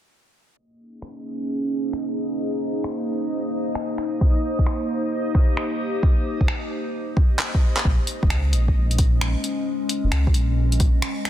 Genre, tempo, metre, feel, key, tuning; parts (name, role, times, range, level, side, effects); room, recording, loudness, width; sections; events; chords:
future garage; 132 BPM; 4/4; swing 66% on 16ths; Bb dorian; A4 = 440 Hz
warbly tape-like pad; sustained chords; 1.0-11.3 s; Ab3 to Eb5; -26 LUFS; equal; chorus, built-in reverb, sidechain pumping
backwards swelling texture; texture; 2.0-7.9 s; Eb5; -37 LUFS; left 1 dB; built-in reverb
deep house drum kit; drums; 1.0-11.3 s; finger snaps, handclaps, hi-hat; -28 LUFS; equal; soft clipping on snare, low-pass filter on snare, low-pass filter on hats, low-pass filter on room
electronic kick drum; drums; 4.2-10.9 s; -19 LUFS; equal
dark detuned saw bass; bass; 7.8-11.0 s; F1 to Db2; -21 LUFS; equal; tube saturation, sidechain pumping
light reverb; dense, heavily limited modern master, low-pass filter; -20 LUFS; side -12 dB against mid
0.6-7.8 A section; 7.8-11.3 B section
filter sweep on drum 0.6-7.8; filter sweep 0.6-7.8; drum fill 7.4-7.8
0.6 Bbm11; 4.2 Cm7; 7.8 Bbm11